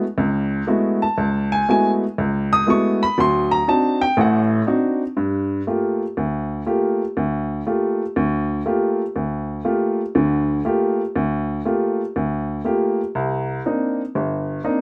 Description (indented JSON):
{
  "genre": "jazz",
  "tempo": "120 BPM",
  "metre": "4/4",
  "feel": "swing 66% on 8ths",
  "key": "G minor from 5.2 s",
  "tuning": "A4 = 440 Hz",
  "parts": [
    { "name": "warm upright piano", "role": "solo", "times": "0.0-14.8 s", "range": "G1 to D#6", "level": "-20 LUFS", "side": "equal", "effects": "none" }
  ],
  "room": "moderate studio reverb, RT60 0.6 s",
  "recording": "none",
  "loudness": "-21 LUFS",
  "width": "mono",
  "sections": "0.0-5.2 A section; 5.2-14.8 B section",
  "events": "none",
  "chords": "0.0 F#m11; 3.2 D7b9; 5.2 Gm9; 13.2 Cm9"
}